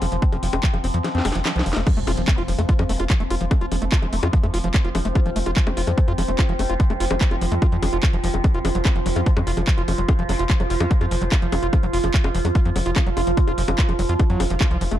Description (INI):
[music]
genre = psychedelic trance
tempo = 146 BPM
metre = 4/4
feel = straight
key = unclear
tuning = A4 = 436 Hz
[part]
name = overtone-sweeping drone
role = sustained chords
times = 0.0-15.0 s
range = F3 to F4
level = -29 LUFS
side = equal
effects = chorus, built-in reverb, phaser, sidechain pumping
[part]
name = overdriven acid bass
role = riff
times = 0.0-15.0 s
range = F3 to F4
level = -28 LUFS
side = equal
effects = distortion, auto-pan, sidechain pumping, digital delay
[part]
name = tight sequencer bass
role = bass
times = 0.0-15.0 s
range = F1 to F2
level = -24 LUFS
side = equal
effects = none
[part]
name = drum and bass drum kit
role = drums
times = 0.0-15.0 s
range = bongos, crash cymbal, handclaps, hi-hat, snare drum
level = -28 LUFS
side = left 2 dB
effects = none
[part]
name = deep dark ambient pad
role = texture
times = 0.2-15.0 s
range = F4 to C6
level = -31 LUFS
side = right 4 dB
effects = chorus, built-in reverb, sidechain pumping
[part]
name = electronic kick drum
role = drums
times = 0.2-14.7 s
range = none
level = -19 LUFS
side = equal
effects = overdrive
[part]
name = impact and swell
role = sound effects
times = 2.0-3.5, 14.4-15.0 s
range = none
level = -34 LUFS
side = equal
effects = none
[part]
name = vowel-sweep wobble bass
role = second line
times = 2.3-4.2, 8.9-11.2 s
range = F3 to C4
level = -41 LUFS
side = left 4 dB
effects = none
[sound]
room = little or no reverb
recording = dark, warm production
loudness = -18 LUFS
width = side -12 dB against mid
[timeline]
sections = 0.0-1.9 A section; 1.9-15.0 B section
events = kick drops out 1.0-1.9; drum fill 1.0-1.9; drop 1.9-15.0; impact 1.9-3.5; swell 14.4-15.0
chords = 0.0 F5